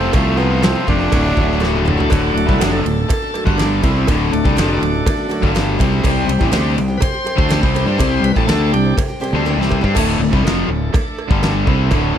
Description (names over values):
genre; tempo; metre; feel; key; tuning
classic rock; 122 BPM; 4/4; straight; unclear; A4 = 442 Hz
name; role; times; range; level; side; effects
raspy tenor saxophone; melody; 0.0-1.8 s; A3 to D4; -22 LUFS; right 2 dB; tape echo
picked steel-string acoustic guitar; accompaniment; 0.0-10.0 s; D3 to G5; -26 LUFS; left 1 dB; none
bright tonewheel organ; sustained chords; 0.0-12.2 s; C3 to C5; -22 LUFS; equal; overdrive, slow rotary speaker
biting overdriven guitar; riff; 0.0-12.2 s; D2 to F#4; -22 LUFS; left 16 dB; none
cranked stack guitar; riff; 0.0-12.2 s; D2 to F#4; -24 LUFS; equal; overdrive, spring reverb
tight distorted guitar; riff; 0.0-12.2 s; D2 to F#4; -24 LUFS; right 10 dB; distortion
fuzz fingered electric bass; bass; 0.0-12.2 s; D1 to G2; -19 LUFS; equal; overdrive
huge arena drum kit; drums; 0.1-12.0 s; crash cymbal, kick drum, ride cymbal, snare drum, toms; -19 LUFS; equal; none
cowbell; percussion; 0.1-12.0 s; none; -29 LUFS; right 10 dB; none
room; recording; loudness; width
little or no reverb; dry, close 1970s-style studio recording; -14 LUFS; side -9 dB against mid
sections
0.0-2.1 A section; 2.1-10.0 B section; 10.0-12.2 C section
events
drum fill 1.6-2.1, 9.5-10.0; tonewheel organ solo 2.1-10.0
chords
0.0 F; 1.1 D; 6.0 C5; 10.0 D5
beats
| 0.14 0.64 1.13 1.62 | 2.11 2.60 3.10 3.59 | 4.08 4.57 5.06 5.55 | 6.04 6.53 7.02 7.51 | 8.00 8.49 8.98 9.47 | 9.96 10.44 10.93 11.42 | 11.91